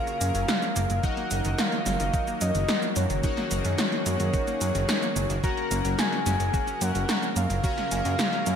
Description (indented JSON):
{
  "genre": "synthwave",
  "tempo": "109 BPM",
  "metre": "4/4",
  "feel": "straight",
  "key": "F# major",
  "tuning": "A4 = 440 Hz",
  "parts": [
    { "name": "soft octave-layered synth lead", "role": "melody", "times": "0.0-8.6 s", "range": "C#5 to A#5", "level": "-30 LUFS", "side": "left 1 dB", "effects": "chorus, ping-pong delay" },
    { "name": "soft supersaw", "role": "sustained chords", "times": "0.0-8.6 s", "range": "C#3 to A#4", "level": "-33 LUFS", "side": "equal", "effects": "sidechain pumping" },
    { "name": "analog pluck", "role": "arpeggios", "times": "0.0-8.5 s", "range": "D#3 to F#4", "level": "-36 LUFS", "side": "right 3 dB", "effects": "none" },
    { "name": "chorused polysynth", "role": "stabs", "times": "0.0-8.6 s", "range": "C#4 to A#5", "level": "-34 LUFS", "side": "left 4 dB", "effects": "none" },
    { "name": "80s electronic pad drums", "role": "drums", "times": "0.1-8.6 s", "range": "cabasa, hi-hat, snare drum", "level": "-29 LUFS", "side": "equal", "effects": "overdrive, small room ambience, gated reverb" },
    { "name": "fat analog bass", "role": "bass", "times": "0.2-8.6 s", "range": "F#1 to F#2", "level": "-27 LUFS", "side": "equal", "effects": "tube saturation" },
    { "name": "electronic kick drum", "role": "drums", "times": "1.0-7.7 s", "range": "none", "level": "-28 LUFS", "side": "equal", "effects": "overdrive, small room ambience" }
  ],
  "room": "moderate lush hall reverb, RT60 2.1 s",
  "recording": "bright 1980s-style digital production",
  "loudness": "-23 LUFS",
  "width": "side -8 dB against mid",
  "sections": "0.0-8.6 A section",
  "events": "none",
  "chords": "0.0 F#; 1.0 D#m/F#; 5.4 F#"
}